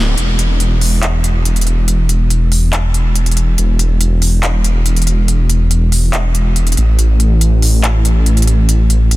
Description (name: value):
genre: future bass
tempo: 141 BPM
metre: 4/4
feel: half-time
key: unclear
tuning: A4 = 439 Hz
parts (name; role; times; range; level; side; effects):
- wide detuned saw bass; bass; 0.0-9.2 s; D1 to A1; -11 LUFS; equal; chorus
- pop drum kit; drums; 0.2-9.2 s; handclaps, hi-hat; -19 LUFS; equal; soft clipping on snare
room: digital ambience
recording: dense, heavily limited modern master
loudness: -11 LUFS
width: side -18 dB against mid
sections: 0.2-9.2 A section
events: band accent 0.0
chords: none